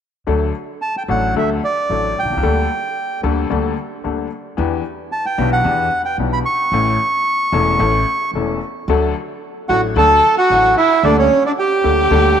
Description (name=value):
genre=tango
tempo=111 BPM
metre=4/4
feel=rubato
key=D major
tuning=A4 = 438 Hz
part: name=bright upright piano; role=accompaniment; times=0.3-12.3 s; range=E1 to A4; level=-21 LUFS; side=left 7 dB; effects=none
part: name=upright bass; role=bass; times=0.3-12.3 s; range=E1 to E2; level=-20 LUFS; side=right 1 dB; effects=none
part: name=bandoneon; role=melody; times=0.8-12.4 s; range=C#4 to C#6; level=-16 LUFS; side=right 3 dB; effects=none
part: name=dark violin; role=second line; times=9.7-12.4 s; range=C#4 to A4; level=-20 LUFS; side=left 8 dB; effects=none
room=moderate plate reverb, RT60 3.3 s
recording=1960s-style stereo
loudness=-14 LUFS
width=side -8 dB against mid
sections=0.3-8.9 A section; 8.9-12.4 B section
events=none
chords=0.3 D; 2.4 Gmadd9/D; 4.6 Em7; 6.7 A; 8.9 D; 11.0 Gmadd9/D